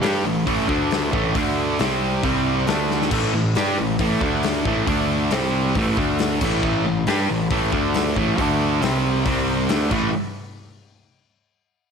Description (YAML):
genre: blues rock power trio and southern rock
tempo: 137 BPM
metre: 4/4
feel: straight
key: A minor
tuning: A4 = 440 Hz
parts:
  - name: thick fuzz guitar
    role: riff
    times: 0.0-10.1 s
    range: A2 to G4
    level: -20 LUFS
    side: right 1 dB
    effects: distortion
  - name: modern bright picked electric bass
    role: bass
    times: 0.0-10.1 s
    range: A1 to G2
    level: -26 LUFS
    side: right 1 dB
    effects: none
  - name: big rock drum kit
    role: drums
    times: 0.0-10.0 s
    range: crash cymbal, hi-hat, kick drum, snare drum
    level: -26 LUFS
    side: left 3 dB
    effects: none
room: moderate echo chamber reverb, RT60 1.4 s, studio ambience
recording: 1960s-style stereo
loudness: -18 LUFS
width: side -6 dB against mid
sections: 0.0-3.1 A section; 3.1-10.1 A section; 10.1-11.9 B section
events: drum fill 2.9, 9.9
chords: 0.0 A5; 0.7 D5; 1.1 A5; 1.4 D5; 1.8 C5; 2.7 D5; 3.1 A5; 4.2 D5; 4.7 A5; 4.9 D5; 5.3 C5; 5.8 A5; 6.0 D5; 6.4 A5; 7.7 D5; 8.2 A5; 8.4 D5; 8.8 C5; 9.7 D5; 9.9 A5; 10.1 N.C.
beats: 0.04 0.48 0.92 | 1.36 1.80 2.24 2.68 | 3.12 3.56 3.99 4.43 | 4.87 5.31 5.75 6.19 | 6.63 7.07 7.51 7.95 | 8.38 8.82 9.26 9.70